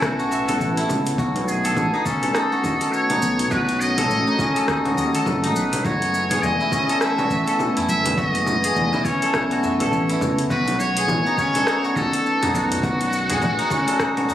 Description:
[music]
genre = organic downtempo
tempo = 103 BPM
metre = 4/4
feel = swing 60% on 16ths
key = unclear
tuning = A4 = 439 Hz
[part]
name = trumpet with metal mute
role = melody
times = 0.0-14.3 s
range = F#4 to E5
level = -24 LUFS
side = equal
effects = digital delay
[part]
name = warm analog pad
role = sustained chords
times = 0.0-14.3 s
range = A2 to G#5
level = -27 LUFS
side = right 1 dB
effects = lush chorus, sidechain pumping
[part]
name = steel-string zither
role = arpeggios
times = 0.0-14.3 s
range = C#4 to E5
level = -22 LUFS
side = left 1 dB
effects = tape echo
[part]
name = woody fretless electric bass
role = bass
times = 0.0-13.5 s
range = E1 to D#2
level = -25 LUFS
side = equal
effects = sidechain pumping
[part]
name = deep house drum kit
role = drums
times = 0.0-14.3 s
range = congas, hi-hat, rim click, shaker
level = -27 LUFS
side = equal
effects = overdrive
[part]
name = electronic kick drum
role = drums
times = 0.0-14.1 s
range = none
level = -29 LUFS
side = equal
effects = overdrive
[part]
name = darbuka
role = percussion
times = 6.4-14.3 s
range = none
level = -37 LUFS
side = left 1 dB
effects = none
[sound]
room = light reverb, digital ambience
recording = recorded on a phone in the room, studio ambience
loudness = -18 LUFS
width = side -11 dB against mid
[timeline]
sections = 0.0-14.3 A section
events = none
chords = 0.0 F#m7; 1.2 B7; 5.8 F#m11; 10.5 B7

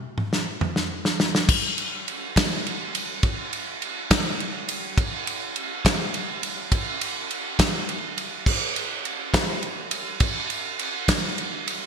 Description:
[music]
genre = rock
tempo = 69 BPM (dotted quarters)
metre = 6/8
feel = straight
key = none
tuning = none
[part]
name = loose indie drum kit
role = drums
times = 0.2-11.8 s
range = crash cymbal, kick drum, ride cymbal, snare drum, toms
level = -22 LUFS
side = equal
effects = gated reverb
[sound]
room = moderate lush hall reverb, RT60 1.9 s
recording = bright 1980s-style digital production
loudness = -23 LUFS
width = side -6 dB against mid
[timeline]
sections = 0.0-1.5 A section; 1.5-11.9 B section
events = drum fill 0.0-1.5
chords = none

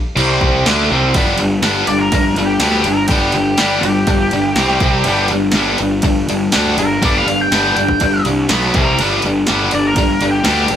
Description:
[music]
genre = garage rock duo or trio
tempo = 123 BPM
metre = 4/4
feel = straight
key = G major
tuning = A4 = 440 Hz
[part]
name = biting overdriven guitar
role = riff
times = 0.2-10.8 s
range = B2 to D4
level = -15 LUFS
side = left 1 dB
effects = none
[part]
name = fuzz picked electric bass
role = bass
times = 0.2-10.8 s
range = G1 to D2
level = -19 LUFS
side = equal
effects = overdrive
[part]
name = punchy analog drum machine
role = drums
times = 0.2-10.8 s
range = crash cymbal, kick drum, ride cymbal, snare drum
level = -20 LUFS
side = equal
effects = none
[part]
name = octave-fuzz lead guitar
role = melody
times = 1.9-10.8 s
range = G4 to G5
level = -18 LUFS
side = equal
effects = distortion
[sound]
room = moderate large studio reverb, RT60 1.0 s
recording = band playing live in one room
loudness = -12 LUFS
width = side -9 dB against mid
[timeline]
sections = 0.0-1.1 A section; 1.1-10.8 B section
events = kick and snare drop out 0.9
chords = 0.2 C5; 0.7 G5; 1.1 G; 4.6 C5; 5.1 G; 8.5 B5; 8.7 C5; 9.0 G

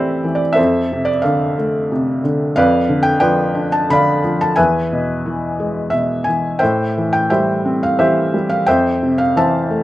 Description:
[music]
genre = classical, lyrical solo piano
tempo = 89 BPM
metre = 3/4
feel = rubato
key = A minor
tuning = A4 = 440 Hz
[part]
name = felt-muted upright piano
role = solo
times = 0.0-9.8 s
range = E2 to B5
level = -14 LUFS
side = equal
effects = none
[sound]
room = little or no reverb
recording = close, detailed microphones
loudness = -14 LUFS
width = side -15 dB against mid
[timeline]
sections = 0.0-9.8 A section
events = none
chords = 0.0 Am7; 0.6 F6; 2.6 Bdim/F; 4.6 E; 6.6 Am7; 8.7 Fmaj7

